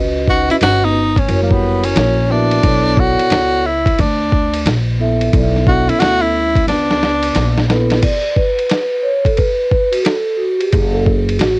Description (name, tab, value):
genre	hip hop, jazz-hop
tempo	89 BPM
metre	4/4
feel	swing 64% on 16ths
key	B minor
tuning	A4 = 441 Hz
part	vibraphone with soft mallets	accompaniment	0.0-11.6 s	B3 to E5	-17 LUFS	right 1 dB	cassette tape
part	upright bass	bass	0.0-11.6 s	F#1 to D2	-18 LUFS	equal	none
part	warm tenor saxophone	melody	0.3-7.7 s	A#3 to F#4	-15 LUFS	equal	cassette tape
part	mellow electric guitar	second line	0.3-7.7 s	F#3 to D#4	-26 LUFS	left 1 dB	spring reverb, cassette tape
part	lo-fi sampler-style drum kit	drums	0.3-11.6 s	crash cymbal, hi-hat, kick drum, ride cymbal, snare drum	-17 LUFS	equal	cassette tape
room	light reverb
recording	home recording on cassette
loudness	-12 LUFS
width	side -25 dB against mid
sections	0.0-8.0 A section; 8.0-11.6 B section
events	drum fill 6.7-8.0; vibraphone solo 8.0-11.6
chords	0.0 D#7alt; 1.3 F#7; 2.6 Bm9; 8.0 N.C.; 10.7 F#m